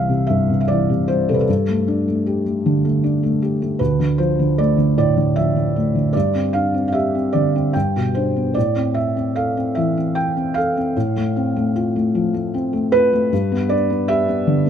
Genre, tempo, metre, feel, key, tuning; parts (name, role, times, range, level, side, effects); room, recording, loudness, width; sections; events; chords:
classical, lyrical solo piano; 76 BPM; 3/4; rubato; A4 = 440 Hz
felt-muted upright piano; solo; 0.0-14.7 s; C2 to G5; -16 LUFS; equal
light reverb; close, detailed microphones; -16 LUFS; side -8 dB against mid
0.0-14.7 A section
0.0 C; 1.5 Gsus2; 3.8 Dm; 6.1 Gsus4; 7.8 G; 8.6 Am; 11.0 F/A; 13.3 G